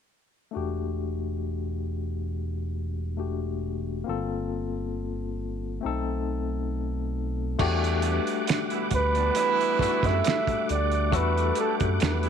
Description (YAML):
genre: R&B, neo-soul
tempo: 68 BPM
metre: 4/4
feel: swing 53% on 16ths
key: E minor from 7.6 s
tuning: A4 = 441 Hz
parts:
  - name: barky tine electric piano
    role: accompaniment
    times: 0.5-12.3 s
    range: A3 to A4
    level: -30 LUFS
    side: left 10 dB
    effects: overdrive, fast tremolo
  - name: smooth synth bass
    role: bass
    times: 0.6-12.3 s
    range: E1 to F#2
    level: -29 LUFS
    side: right 1 dB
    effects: none
  - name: tonewheel organ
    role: sustained chords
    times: 7.6-12.3 s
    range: G3 to D6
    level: -33 LUFS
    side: right 1 dB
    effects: fast rotary speaker, chorus vibrato
  - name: cloth-damped thuddy drum kit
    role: drums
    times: 7.6-12.3 s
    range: crash cymbal, finger snaps, hi-hat, kick drum, snare drum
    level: -29 LUFS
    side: right 5 dB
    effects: none
  - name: clear horn section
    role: stabs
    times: 8.0-12.3 s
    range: D3 to G4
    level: -32 LUFS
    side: right 12 dB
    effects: tape echo
  - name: breathy flugelhorn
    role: melody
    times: 8.9-12.3 s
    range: A4 to E5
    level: -26 LUFS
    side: right 4 dB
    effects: none
room: light reverb, small room ambience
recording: 1960s-style stereo with parts hard left and right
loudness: -25 LUFS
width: side -8 dB against mid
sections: 0.5-7.6 A section; 7.6-12.3 B section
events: none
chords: 0.5 Em9; 4.1 Gm9; 5.8 B7b9; 7.6 Em9